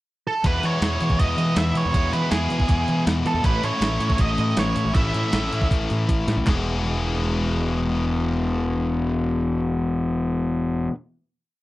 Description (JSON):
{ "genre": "indie rock", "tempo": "159 BPM", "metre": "4/4", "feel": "straight", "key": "E major", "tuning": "A4 = 440 Hz", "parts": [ { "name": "octave-fuzz lead guitar", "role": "melody", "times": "0.3-5.7 s", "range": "G#4 to E5", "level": "-26 LUFS", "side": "right 4 dB", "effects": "distortion, analog delay" }, { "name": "biting overdriven guitar", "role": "riff", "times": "0.4-10.9 s", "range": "E2 to G#4", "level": "-24 LUFS", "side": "left 3 dB", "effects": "none" }, { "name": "fuzz fingered electric bass", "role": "bass", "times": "0.4-10.9 s", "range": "E1 to E3", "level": "-25 LUFS", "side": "right 1 dB", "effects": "overdrive" }, { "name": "crisp 8-bit digital drum machine", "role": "drums", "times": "0.4-6.6 s", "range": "handclaps, hi-hat, kick drum, snare drum", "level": "-22 LUFS", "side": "right 1 dB", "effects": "none" } ], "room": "light reverb", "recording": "dark, warm production", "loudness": "-20 LUFS", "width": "side -17 dB against mid", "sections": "0.0-0.4 pickup bar; 0.4-6.5 interlude; 6.5-9.5 final chord", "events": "drum fill 5.7-6.5", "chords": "0.4 E; 3.4 A; 6.5 E" }